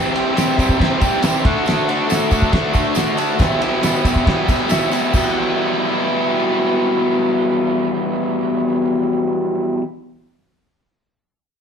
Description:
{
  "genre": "garage rock duo or trio",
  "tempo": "138 BPM",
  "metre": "4/4",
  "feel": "straight",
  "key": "E minor",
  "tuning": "A4 = 439 Hz",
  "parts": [
    { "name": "raw garage guitar", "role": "riff", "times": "0.0-9.8 s", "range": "E2 to G4", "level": "-16 LUFS", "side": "equal", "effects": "overdrive" },
    { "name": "cloth-damped thuddy drum kit", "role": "drums", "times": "0.2-5.2 s", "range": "crash cymbal, kick drum, ride cymbal, snare drum", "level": "-19 LUFS", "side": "equal", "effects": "none" },
    { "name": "tambourine", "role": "percussion", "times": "0.2-5.3 s", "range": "none", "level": "-32 LUFS", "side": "right 4 dB", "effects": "none" }
  ],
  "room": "moderate studio reverb, RT60 0.9 s",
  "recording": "band playing live in one room",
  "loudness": "-15 LUFS",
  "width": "side -7 dB against mid",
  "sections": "0.0-5.1 A section; 5.1-8.6 B section",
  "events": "none",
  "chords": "0.0 C; 1.5 D; 3.4 Em"
}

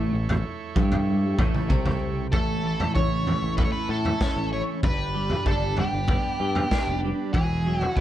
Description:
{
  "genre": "psychedelic rock",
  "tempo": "96 BPM",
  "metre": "4/4",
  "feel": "straight",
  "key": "A mixolydian",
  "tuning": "A4 = 439 Hz",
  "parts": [
    { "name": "combo organ", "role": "sustained chords", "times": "0.0-8.0 s", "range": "F#3 to G#5", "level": "-37 LUFS", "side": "right 6 dB", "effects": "none" },
    { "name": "twelve-string electric guitar", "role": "riff", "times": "0.0-8.0 s", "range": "G2 to G4", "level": "-28 LUFS", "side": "right 1 dB", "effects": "phaser, double-tracked left and right" },
    { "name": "overdriven picked electric bass", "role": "bass", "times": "0.0-8.0 s", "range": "E1 to A2", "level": "-28 LUFS", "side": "equal", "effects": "none" },
    { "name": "raw garage drum kit", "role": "drums", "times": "0.3-8.0 s", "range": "kick drum, snare drum, toms", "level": "-26 LUFS", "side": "equal", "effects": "none" },
    { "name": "octave-fuzz lead guitar", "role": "melody", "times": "2.3-8.0 s", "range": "G4 to C#5", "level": "-29 LUFS", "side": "equal", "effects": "distortion, slapback echo" }
  ],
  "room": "little or no reverb",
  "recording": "none",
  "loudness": "-22 LUFS",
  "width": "side -12 dB against mid",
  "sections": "0.0-2.3 A section; 2.3-8.0 B section",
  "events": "none",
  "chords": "0.0 A; 4.8 G; 7.3 Eadd9"
}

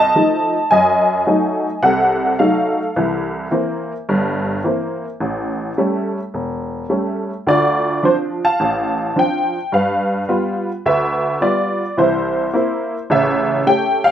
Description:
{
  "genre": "solo jazz",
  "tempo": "106 BPM",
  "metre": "4/4",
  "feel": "swing 67% on 8ths",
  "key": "unclear",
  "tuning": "A4 = 440 Hz",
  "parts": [
    { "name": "honky-tonk upright piano", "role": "solo", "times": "0.0-14.1 s", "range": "E1 to A5", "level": "-15 LUFS", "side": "equal", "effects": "none" }
  ],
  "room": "light reverb",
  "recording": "minimal, uncompressed stereo recording",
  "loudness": "-15 LUFS",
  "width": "side -10 dB against mid",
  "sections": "0.0-14.1 A section",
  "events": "none",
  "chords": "0.0 F7; 0.7 F#dim7; 3.0 C7; 5.2 A7; 7.5 Dm7; 9.7 G7; 12.0 C7; 13.1 A7"
}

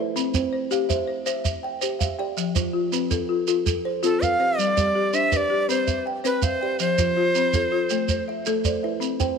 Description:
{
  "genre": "southern african traditional, mbira-style interlocking cycle",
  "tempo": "108 BPM (dotted quarters)",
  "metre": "12/8",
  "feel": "straight",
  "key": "unclear",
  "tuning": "A4 = 440 Hz",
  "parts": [
    { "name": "folk marimba with medium hard mallets", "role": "arpeggios", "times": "0.0-9.4 s", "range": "F3 to G5", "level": "-26 LUFS", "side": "left 10 dB", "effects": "none" },
    { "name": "kalimba", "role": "arpeggios", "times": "0.0-9.4 s", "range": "F3 to B5", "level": "-29 LUFS", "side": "right 12 dB", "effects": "none" },
    { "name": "shekere", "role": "percussion", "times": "0.2-9.4 s", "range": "none", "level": "-26 LUFS", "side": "right 4 dB", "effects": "none" },
    { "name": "breathy bright Native American-style cedar flute", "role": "melody", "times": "4.0-8.2 s", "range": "A4 to F5", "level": "-22 LUFS", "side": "right 1 dB", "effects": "none" }
  ],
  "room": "moderate plate reverb, RT60 3.0 s",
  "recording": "1960s-style stereo with parts hard left and right",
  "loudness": "-21 LUFS",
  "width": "side -6 dB against mid",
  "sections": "0.0-9.4 A section",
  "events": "none",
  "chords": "0.2 C; 2.4 F; 4.6 G; 5.7 C; 6.8 F; 7.9 Am"
}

